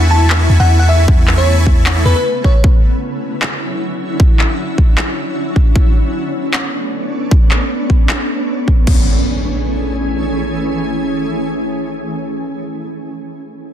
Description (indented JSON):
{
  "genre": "future bass",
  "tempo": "154 BPM",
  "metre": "4/4",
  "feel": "half-time",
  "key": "A major",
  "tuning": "A4 = 440 Hz",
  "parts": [
    { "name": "shimmering ambient pad", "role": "sustained chords", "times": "0.0-12.4 s", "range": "C#3 to G#4", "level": "-20 LUFS", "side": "equal", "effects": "chorus, built-in reverb, sidechain pumping" },
    { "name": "dense compressed supersaw", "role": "riff", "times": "0.0-2.2 s", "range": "E4 to C#6", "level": "-20 LUFS", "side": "equal", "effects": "sidechain pumping, digital delay" },
    { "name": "long sustained 808-style bass", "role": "bass", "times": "0.0-2.1 s", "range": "E2", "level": "-11 LUFS", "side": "equal", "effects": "sidechain pumping" },
    { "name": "bell-like FM electric piano", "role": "melody", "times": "0.1-2.6 s", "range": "B4 to A5", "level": "-18 LUFS", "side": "left 1 dB", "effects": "chorus, sidechain pumping, dub echo" },
    { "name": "trap drum kit", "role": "drums", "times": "0.3-9.0 s", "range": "crash cymbal, handclaps", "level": "-20 LUFS", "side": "left 1 dB", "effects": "overdrive" },
    { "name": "electronic kick drum", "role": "drums", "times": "1.1-9.0 s", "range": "none", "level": "-10 LUFS", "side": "equal", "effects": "none" },
    { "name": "impact", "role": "sound effects", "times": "8.9-12.4 s", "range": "none", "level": "-22 LUFS", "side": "equal", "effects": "none" }
  ],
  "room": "light reverb",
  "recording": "dense, heavily limited modern master",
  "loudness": "-12 LUFS",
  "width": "side -10 dB against mid",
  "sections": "0.0-8.9 A section; 8.9-12.0 B section",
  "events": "none",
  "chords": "0.0 Amaj9/E; 2.6 Dmaj9; 5.8 Bm9; 8.9 Amaj7",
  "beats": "0.30 0.69 | 1.08 1.47 1.86 2.25 | 2.64 3.03 3.42 3.81 | 4.20 4.59 4.98 5.37 | 5.75 6.14 6.53 6.92 | 7.31 7.70 8.09 8.48 | 8.87 9.26 9.65 10.04 | 10.43 10.82 11.21 11.60"
}